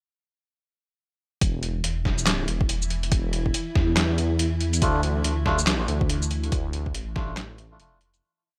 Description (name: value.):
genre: deep dubstep.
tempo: 141 BPM.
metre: 4/4.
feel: swing 60% on 16ths, half-time.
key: unclear.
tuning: A4 = 440 Hz.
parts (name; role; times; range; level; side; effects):
granular cloud pad; sustained chords; 2.2-8.3 s; E3 to E4; -35 LUFS; equal; built-in reverb.
dark detuned saw bass; bass; 1.4-8.2 s; E1 to E2; -28 LUFS; equal; none.
electronic kick drum; drums; 1.4-7.3 s; none; -28 LUFS; equal; overdrive.
trip hop sampler-style drum kit; drums; 1.4-8.2 s; handclaps, hi-hat, shaker, snare drum; -29 LUFS; equal; overdrive.
melodica; stabs; 4.8-8.0 s; A3 to F4; -32 LUFS; equal; dub echo.
room: little or no reverb.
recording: dry, gritty hardware recording.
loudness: -25 LUFS.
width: mono.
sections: 1.4-8.2 drop.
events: drop 1.4-8.2; fade-out 6.0-8.2.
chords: 1.4 N.C.; 4.8 Dm.